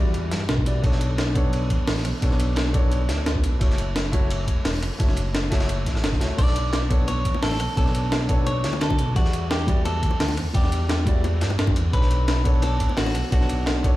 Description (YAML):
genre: liquid drum and bass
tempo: 173 BPM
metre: 4/4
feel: straight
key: B minor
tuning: A4 = 440 Hz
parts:
  - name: dark grand piano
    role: accompaniment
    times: 0.0-14.0 s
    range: G3 to F#5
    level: -30 LUFS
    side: left 1 dB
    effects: tape echo
  - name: smooth synth bass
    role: bass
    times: 0.0-14.0 s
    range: E1 to G2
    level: -24 LUFS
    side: equal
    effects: none
  - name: breakbeat sampler-style drum kit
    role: drums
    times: 0.1-13.9 s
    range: crash cymbal, hi-hat, rim click, snare drum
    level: -28 LUFS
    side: equal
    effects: small room reverb
  - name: crunchy breakbeat drum kit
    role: drums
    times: 0.1-13.9 s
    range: hi-hat, ride cymbal, snare drum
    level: -33 LUFS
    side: right 1 dB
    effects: high-pass filter on cymbals, small room reverb, high-pass filter on hats, high-pass filter on snare, high-pass filter on room
  - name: electronic kick drum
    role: drums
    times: 0.6-13.9 s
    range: none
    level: -22 LUFS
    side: equal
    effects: small room reverb
  - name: clean electric guitar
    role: melody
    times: 6.4-14.0 s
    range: F#4 to D5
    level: -30 LUFS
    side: equal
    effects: tape echo
  - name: bongos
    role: percussion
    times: 7.1-13.1 s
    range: none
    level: -34 LUFS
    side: left 6 dB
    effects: none
room: little or no reverb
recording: played on a big sound system in a bare room, stone room reverb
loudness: -20 LUFS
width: side -16 dB against mid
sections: 0.0-14.0 A section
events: none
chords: 0.0 Em9; 0.8 Bm9; 3.6 F#m7; 6.4 Bm9; 9.2 Em9; 11.9 Bm9